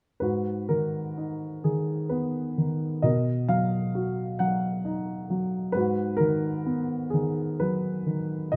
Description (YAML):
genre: classical, lyrical solo piano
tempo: 43 BPM (dotted quarters)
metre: 6/8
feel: rubato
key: G# dorian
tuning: A4 = 441 Hz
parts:
  - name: dark baby grand piano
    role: solo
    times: 0.2-8.6 s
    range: G#2 to F#5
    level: -27 LUFS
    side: equal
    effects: none
room: light reverb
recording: none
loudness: -28 LUFS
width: mono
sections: 0.2-8.6 A section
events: none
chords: 0.2 G#m7; 3.0 Bmaj7; 5.7 G#m7